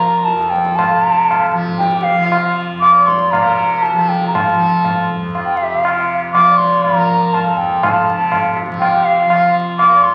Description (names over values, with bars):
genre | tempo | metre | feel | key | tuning
indian classical, Hindustani | 120 BPM | 7/4 | straight | F raga bilaval | A4 = 439 Hz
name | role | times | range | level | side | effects
bansuri | melody | 0.0-10.1 s | E5 to D6 | -16 LUFS | equal | none
warm sarangi | second line | 0.0-10.1 s | F4 to E5 | -27 LUFS | equal | none
tanpura | drone | 0.0-10.1 s | F2 to F3 | -24 LUFS | equal | none
tabla | percussion | 0.0-10.1 s | none | -22 LUFS | equal | none
room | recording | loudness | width
wet large studio reverb, RT60 1.2 s | very old 78 rpm record, vinyl crackle | -14 LUFS | mono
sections
0.0-10.1 A section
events
speeding up 0.0-10.1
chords
none